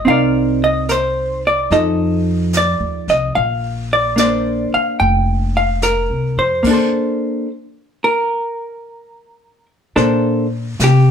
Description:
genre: jazz ballad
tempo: 73 BPM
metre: 4/4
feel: swing 67% on 8ths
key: Bb major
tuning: A4 = 440 Hz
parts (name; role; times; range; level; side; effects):
- vintage hollow-body jazz guitar; accompaniment; 0.0-11.1 s; F3 to G5; -15 LUFS; equal; none
- upright bass; bass; 0.1-11.1 s; F1 to C3; -18 LUFS; left 1 dB; none
- jazz brush drum kit; drums; 0.1-11.1 s; brushed snare drum, crash cymbal, hi-hat, kick drum, snare drum; -26 LUFS; equal; none
room: moderate studio reverb, RT60 0.8 s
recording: band playing live in one room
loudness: -14 LUFS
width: side -7 dB against mid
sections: 0.0-10.0 A section; 10.0-11.1 B section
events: stop 6.6-10.0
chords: 0.1 Cm9; 1.7 F7; 3.3 Bbadd9; 10.0 Bbmaj9

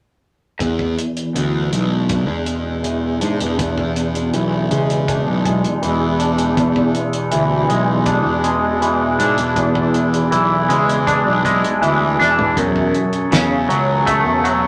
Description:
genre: psychedelic rock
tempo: 80 BPM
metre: 4/4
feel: straight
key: E mixolydian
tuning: A4 = 440 Hz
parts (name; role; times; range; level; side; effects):
- combo organ; sustained chords; 0.6-14.7 s; B3 to D5; -29 LUFS; equal; none
- twangy electric guitar; riff; 0.6-14.7 s; E2 to D4; -20 LUFS; equal; phaser, low-pass filter
- fuzz picked electric bass; bass; 0.6-14.7 s; B1 to C#3; -22 LUFS; equal; overdrive
- metallic inharmonic drone; drone; 2.3-14.7 s; E2 to B2; -28 LUFS; equal; chorus, built-in reverb
- cloth-damped thuddy drum kit; drums; 0.6-14.6 s; hi-hat, kick drum, snare drum, toms; -27 LUFS; equal; none
room: wet studio reverb, RT60 0.6 s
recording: none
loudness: -17 LUFS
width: mono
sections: 0.6-14.7 A section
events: filter sweep 0.6-14.7; drum fill 12.2-12.6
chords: 0.6 E7; 12.6 F#madd9

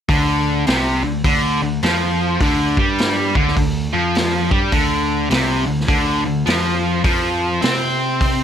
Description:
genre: blues rock power trio and southern rock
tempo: 104 BPM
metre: 4/4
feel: swing 63% on 8ths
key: unclear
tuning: A4 = 439 Hz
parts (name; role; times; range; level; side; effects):
- distorted electric guitar; riff; 0.1-8.4 s; C3 to C4; -18 LUFS; equal; distortion
- growling picked electric bass; bass; 0.1-8.4 s; C2 to C3; -23 LUFS; equal; overdrive
- vintage drum kit; drums; 0.1-8.4 s; hi-hat, kick drum, snare drum; -21 LUFS; equal; none
room: light reverb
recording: none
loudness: -15 LUFS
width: side -9 dB against mid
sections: 0.1-8.4 A section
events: none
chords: 0.1 Csus24

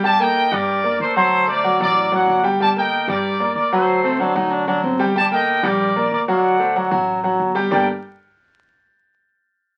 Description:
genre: latin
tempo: 187 BPM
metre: 4/4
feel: straight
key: G harmonic minor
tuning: A4 = 440 Hz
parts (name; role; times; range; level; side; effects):
- bright trumpet section; melody; 0.0-7.9 s; A4 to A5; -20 LUFS; equal; none
- bright grand piano; accompaniment; 0.0-7.9 s; F#3 to G5; -21 LUFS; equal; none
- upright bass; bass; 0.0-7.9 s; G1 to G2; -36 LUFS; equal; none
- warm baritone saxophone; second line; 4.0-5.1, 7.7-7.9 s; Bb3 to Eb4; -25 LUFS; equal; none
room: moderate studio ambience, RT60 0.5 s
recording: very old 78 rpm record, vinyl crackle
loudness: -18 LUFS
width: mono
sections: 0.0-7.7 A section; 7.7-9.0 B section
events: none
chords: 0.0 Gmadd9; 1.3 D; 2.6 Gmadd9; 3.9 D7; 5.2 Gmadd9; 6.4 D; 7.7 Gmadd9

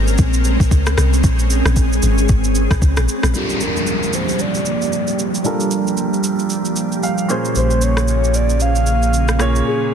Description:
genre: amapiano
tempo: 114 BPM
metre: 4/4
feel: swing 58% on 16ths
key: unclear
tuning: A4 = 438 Hz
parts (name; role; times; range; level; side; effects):
- ethereal airy pad; sustained chords; 0.0-9.9 s; Db3 to Bb4; -20 LUFS; right 2 dB; ensemble chorus, built-in reverb, sidechain pumping, low-pass filter
- deep log drum bass; bass; 0.0-3.3 s; Ab1 to Db2; -16 LUFS; equal; none
- smooth R&B drum kit; drums; 0.1-9.7 s; kick drum, rim click, shaker; -21 LUFS; equal; overdrive
- clear grand piano; accompaniment; 3.3-9.9 s; Bb2 to F5; -23 LUFS; right 1 dB; low-pass filter
- downlifter; sound effects; 3.3-7.6 s; none; -25 LUFS; left 1 dB; none
- breathy flute-like synth lead; melody; 3.4-9.9 s; G4 to F5; -22 LUFS; right 1 dB; chorus, low-pass filter
- sub bass with octave; bass; 7.6-9.6 s; Bb1; -17 LUFS; equal; none
room: little or no reverb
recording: dense, heavily limited modern master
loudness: -14 LUFS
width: side -8 dB against mid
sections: 0.0-3.3 A section; 3.3-9.9 B section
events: drop 0.0-3.3; filter sweep 3.3-9.9; grand piano fill 6.8-7.6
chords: 0.0 Bbm9; 3.3 Gm9; 7.3 Bbm9

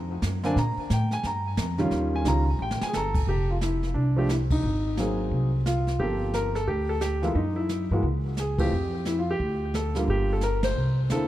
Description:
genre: jazz piano trio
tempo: 176 BPM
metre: 4/4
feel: swing 63% on 8ths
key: F major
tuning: A4 = 439 Hz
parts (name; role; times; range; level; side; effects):
- upright bass; bass; 0.0-11.3 s; F1 to Bb2; -26 LUFS; equal; none
- jazz brush drum kit; drums; 0.2-11.3 s; brushed snare drum, crash cymbal, hi-hat, kick drum, ride cymbal, snare drum; -32 LUFS; equal; none
- warm grand piano; melody; 0.4-11.3 s; D3 to Bb5; -27 LUFS; equal; ping-pong delay
room: light reverb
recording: none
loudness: -23 LUFS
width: side -14 dB against mid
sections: 0.0-3.3 A section; 3.3-11.3 B section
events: grand piano solo 0.0-3.3; drum fill 2.6-2.9; band accent 4.5, 8.6, 10.6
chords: 0.0 F5; 0.6 Bb5; 1.9 Eb9; 3.3 Fsus2; 4.6 Ab9; 6.0 Gm11; 7.4 Gb7sus2; 8.7 Fsus2; 9.4 D5; 10.1 Gm7; 10.8 C9

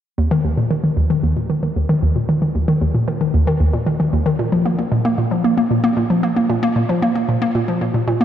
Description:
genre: ambient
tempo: 114 BPM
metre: 4/4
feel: straight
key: unclear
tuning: A4 = 440 Hz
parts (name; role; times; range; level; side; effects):
- hollow square pluck; solo; 0.2-8.2 s; Eb2 to Bb3; -15 LUFS; equal; chorus, tape echo
room: wet lush hall reverb, RT60 3.0 s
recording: dark, warm production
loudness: -15 LUFS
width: side -10 dB against mid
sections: 0.2-8.2 A section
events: none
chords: none

